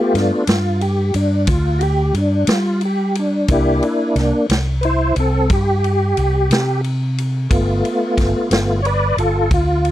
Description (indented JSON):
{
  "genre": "slow blues",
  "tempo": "60 BPM (dotted quarters)",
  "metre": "12/8",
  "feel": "straight",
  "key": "G mixolydian",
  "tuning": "A4 = 440 Hz",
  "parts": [
    { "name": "tonewheel organ", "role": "sustained chords", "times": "0.0-9.9 s", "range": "A3 to D5", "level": "-18 LUFS", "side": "equal", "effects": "slow rotary speaker, chorus vibrato" },
    { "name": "mellow fretless electric bass", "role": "bass", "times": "0.1-9.9 s", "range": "G1 to G3", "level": "-18 LUFS", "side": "equal", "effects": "none" },
    { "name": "vintage drum kit", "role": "drums", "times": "0.1-9.9 s", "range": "kick drum, ride cymbal, snare drum", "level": "-22 LUFS", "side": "equal", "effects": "none" }
  ],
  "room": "small room reverb",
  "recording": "dry, close 1970s-style studio recording",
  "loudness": "-15 LUFS",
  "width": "side -13 dB against mid",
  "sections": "0.0-9.9 A section",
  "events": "tonewheel organ solo 0.0-9.9",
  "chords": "0.0 G7; 3.5 C7; 7.5 G7",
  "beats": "0.48 1.48 2.49 | 3.49 4.49 5.50 6.50 | 7.50 8.51 9.51"
}